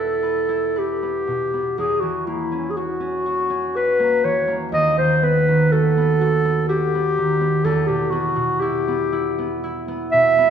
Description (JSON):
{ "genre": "classical, romantic duo for clarinet and harp", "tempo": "61 BPM", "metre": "3/4", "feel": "rubato", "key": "E minor", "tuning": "A4 = 439 Hz", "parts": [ { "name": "warm clarinet", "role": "melody", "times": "0.0-10.5 s", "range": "E4 to E5", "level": "-19 LUFS", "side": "equal", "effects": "none" }, { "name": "concert harp", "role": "accompaniment", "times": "0.0-10.5 s", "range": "D#2 to B4", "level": "-22 LUFS", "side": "right 2 dB", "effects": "none" } ], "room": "wet recital hall reverb, RT60 1.5 s", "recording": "heard from further back in the room", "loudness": "-18 LUFS", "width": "side -8 dB against mid", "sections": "0.0-10.5 A section", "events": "none", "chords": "0.0 Em; 1.8 F#7/E; 4.7 B7/D#; 7.6 Em", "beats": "0.76 | 1.77 2.76 3.76 | 4.74 5.72 6.69 | 7.65 8.61 9.62" }